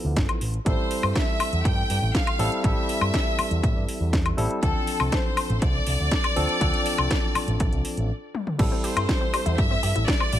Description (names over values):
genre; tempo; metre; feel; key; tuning
nu-disco, nu disco; 121 BPM; 4/4; straight; A minor; A4 = 438 Hz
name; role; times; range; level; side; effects
barky tine electric piano; accompaniment; 0.0-10.3 s; F3 to A4; -30 LUFS; equal; overdrive
picked electric bass with an envelope filter; bass; 0.0-10.4 s; G1 to A2; -25 LUFS; equal; none
electronic kick drum; drums; 0.2-10.2 s; none; -25 LUFS; equal; overdrive
house drum kit; drums; 0.2-10.4 s; crash cymbal, hi-hat, snare drum, toms, woodblock; -28 LUFS; left 2 dB; overdrive
clear chamber violin section; melody; 0.7-10.4 s; A4 to G5; -28 LUFS; equal; dub echo
analog pluck; arpeggios; 8.6-10.4 s; G3 to G4; -34 LUFS; left 5 dB; chorus, sidechain pumping, dub echo
room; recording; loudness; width
little or no reverb; none; -21 LUFS; side -12 dB against mid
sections
0.0-8.6 A section; 8.6-10.4 B section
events
filter sweep on tine electric piano 0.0-8.6; break 8.1-8.6; drum fill 8.3; drop 8.6-10.4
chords
0.4 Am7; 4.6 Dm7; 8.6 Am7